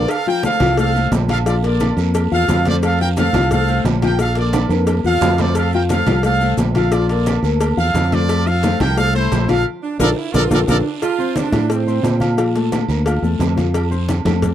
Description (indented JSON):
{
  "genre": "latin, salsa",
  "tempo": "176 BPM",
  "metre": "4/4",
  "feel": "straight",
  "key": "F major",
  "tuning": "A4 = 442 Hz",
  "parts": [
    { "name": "bright trumpet section", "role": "melody", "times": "0.0-10.8 s", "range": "E4 to G5", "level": "-21 LUFS", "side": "right 2 dB", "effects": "none" },
    { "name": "dark grand piano", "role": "accompaniment", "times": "0.0-14.5 s", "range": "F3 to F6", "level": "-21 LUFS", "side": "left 6 dB", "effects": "none" },
    { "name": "fingered electric bass", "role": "bass", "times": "0.0-14.5 s", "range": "Bb1 to Bb2", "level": "-18 LUFS", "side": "right 1 dB", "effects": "none" },
    { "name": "agogo bells and timbales", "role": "percussion", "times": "0.1-14.4 s", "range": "none", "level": "-27 LUFS", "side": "right 9 dB", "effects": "none" },
    { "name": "congas", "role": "percussion", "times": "0.1-14.5 s", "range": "none", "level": "-23 LUFS", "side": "equal", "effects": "none" },
    { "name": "cowbell", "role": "percussion", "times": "0.1-14.5 s", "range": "none", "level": "-27 LUFS", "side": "left 4 dB", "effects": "none" },
    { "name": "guiro", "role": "percussion", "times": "0.1-14.5 s", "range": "none", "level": "-37 LUFS", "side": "right 16 dB", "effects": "none" },
    { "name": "maracas", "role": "percussion", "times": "0.1-14.5 s", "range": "none", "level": "-37 LUFS", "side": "left 18 dB", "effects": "none" },
    { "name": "bright saxophone section", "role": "second line", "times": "9.8-12.4 s", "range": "C4 to F4", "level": "-23 LUFS", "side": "right 6 dB", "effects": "none" }
  ],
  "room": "little or no reverb",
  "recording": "dry, close 1970s-style studio recording",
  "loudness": "-14 LUFS",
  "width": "side -11 dB against mid",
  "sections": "0.1-11.0 A section; 11.0-14.5 B section",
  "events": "drum fill 4.5-5.6, 9.7-11.0; band accent 9.7-11.0",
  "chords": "0.1 F; 1.5 Bbmaj7; 2.8 F; 4.2 Bbmaj7; 5.6 F; 6.9 Bbmaj7; 8.3 F; 9.7 Bbmaj7; 11.0 F; 12.4 Bbmaj7; 13.8 F"
}